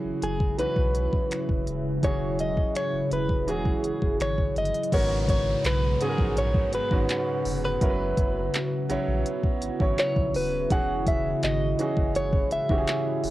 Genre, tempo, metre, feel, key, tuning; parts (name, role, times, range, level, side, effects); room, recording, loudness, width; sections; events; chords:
contemporary R&B; 83 BPM; 4/4; straight; A4 = 442 Hz
clear grand piano; accompaniment; 0.0-13.3 s; G#2 to C#5; -31 LUFS; right 2 dB; cassette tape
deep dark ambient pad; sustained chords; 0.0-13.3 s; C#3 to F#4; -31 LUFS; equal; chorus, built-in reverb, sidechain pumping, cassette tape
saturated sub bass; bass; 0.0-13.3 s; D#1 to B1; -31 LUFS; equal
direct-recorded clean electric guitar; melody; 0.2-13.3 s; G#4 to F#5; -28 LUFS; equal; harmonic tremolo, cassette tape, tape echo
smooth R&B drum kit; drums; 0.2-13.3 s; crash cymbal, finger snaps, handclaps, hi-hat, kick drum; -26 LUFS; equal; cassette tape
downlifter; sound effects; 4.9-10.7 s; -44 LUFS; equal
light reverb; home recording on cassette; -23 LUFS; side -16 dB against mid
0.0-4.9 A section; 4.9-13.3 B section
0.0 E69; 4.9 G#m11; 7.8 F#7sus4; 10.7 E69